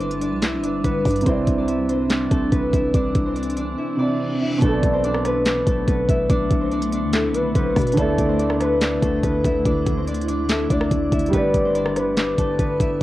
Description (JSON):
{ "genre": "hip hop, trap", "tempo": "143 BPM", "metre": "4/4", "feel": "half-time", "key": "B phrygian", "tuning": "A4 = 439 Hz", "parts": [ { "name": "concert harp", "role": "melody", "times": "0.0-13.0 s", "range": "A3 to E5", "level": "-23 LUFS", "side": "left 1 dB", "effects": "cassette tape" }, { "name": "dark grand piano", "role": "accompaniment", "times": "0.0-13.0 s", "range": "B2 to D5", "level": "-26 LUFS", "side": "right 3 dB", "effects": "cassette tape" }, { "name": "granular cloud pad", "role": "sustained chords", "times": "0.0-13.0 s", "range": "D3 to B4", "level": "-28 LUFS", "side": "equal", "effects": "built-in reverb, cassette tape" }, { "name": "growling 808-style bass", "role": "bass", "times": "0.0-13.0 s", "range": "G1 to B2", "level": "-26 LUFS", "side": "equal", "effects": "none" }, { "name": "trap drum kit", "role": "drums", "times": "0.0-12.9 s", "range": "handclaps, hi-hat, kick drum, rim click, snare drum", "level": "-23 LUFS", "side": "equal", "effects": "overdrive, cassette tape" }, { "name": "reverse cymbal", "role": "sound effects", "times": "4.0-4.6 s", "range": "none", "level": "-35 LUFS", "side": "left 2 dB", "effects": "none" }, { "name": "gliding portamento lead", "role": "second line", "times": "4.6-12.2 s", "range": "A4 to D5", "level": "-26 LUFS", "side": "left 1 dB", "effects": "chorus, cassette tape, analog delay" } ], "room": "light reverb", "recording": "home recording on cassette", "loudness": "-18 LUFS", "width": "side -15 dB against mid", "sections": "0.0-4.6 A section; 4.6-13.0 B section", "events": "reverse cymbal 4.0-4.6", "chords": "0.0 G; 1.3 Cadd9; 4.6 Bm7; 8.0 Dsus2; 11.3 G" }